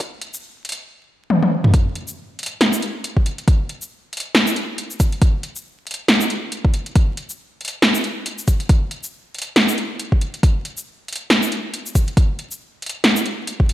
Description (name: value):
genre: dubstep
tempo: 138 BPM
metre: 4/4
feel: swing 57% on 16ths, half-time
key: none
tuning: none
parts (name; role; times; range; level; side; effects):
- deep house drum kit; drums; 0.0-13.7 s; hi-hat, shaker, snare drum, toms; -18 LUFS; equal; overdrive
- electronic kick drum; drums; 0.0-13.7 s; none; -15 LUFS; equal; overdrive, high-pass filter on kick, high-pass filter on room
room: moderate lush hall reverb, RT60 1.6 s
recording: dreamy mix soaked in reverb, vinyl crackle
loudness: -16 LUFS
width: side -14 dB against mid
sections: 0.0-1.7 A section; 1.7-13.7 B section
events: build-up 0.0-1.7; drum fill 1.3-1.7; drop 1.7-13.7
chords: none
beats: | 0.00 0.43 0.87 1.30 | 1.74 2.17 2.61 3.04 | 3.48 3.91 4.35 4.78 | 5.21 5.65 6.08 6.52 | 6.95 7.39 7.82 8.26 | 8.69 9.13 9.56 10.00 | 10.43 10.87 11.30 11.74 | 12.17 12.61 13.04 13.48